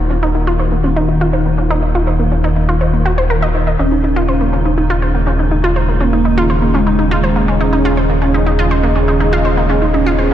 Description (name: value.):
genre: melodic techno.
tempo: 122 BPM.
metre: 4/4.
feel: straight.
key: unclear.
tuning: A4 = 439 Hz.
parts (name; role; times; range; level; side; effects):
dark analog pad; sustained chords; 0.0-10.3 s; Db4 to Gb5; -20 LUFS; right 1 dB; chorus, vintage 12-bit sampler grit.
wide unison pluck; arpeggios; 0.0-10.3 s; Bb3 to Eb5; -18 LUFS; equal; cassette tape, diffuse ambient delay.
round analog bass; bass; 0.0-10.3 s; Eb1; -16 LUFS; equal; none.
swarming drone; drone; 0.0-10.3 s; Eb3 to Eb4; -23 LUFS; equal; built-in reverb, lush chorus.
electronic hi-hat and shaker; drums; 0.1-10.3 s; none; barely audible; none; none.
mellow synth brass; melody; 3.8-10.3 s; Ab3 to Db4; -19 LUFS; right 2 dB; chorus, diffuse ambient delay.
riser; sound effects; 9.2-10.3 s; none; -29 LUFS; right 2 dB; none.
room: moderate lush hall reverb, RT60 2.6 s.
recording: dreamy mix soaked in reverb.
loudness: -12 LUFS.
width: side -11 dB against mid.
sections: 0.0-10.3 A section.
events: filter sweep on synth arpeggio sound 0.0-10.3; riser 9.2-10.3.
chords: 0.0 Ebm; 3.8 Db/Eb.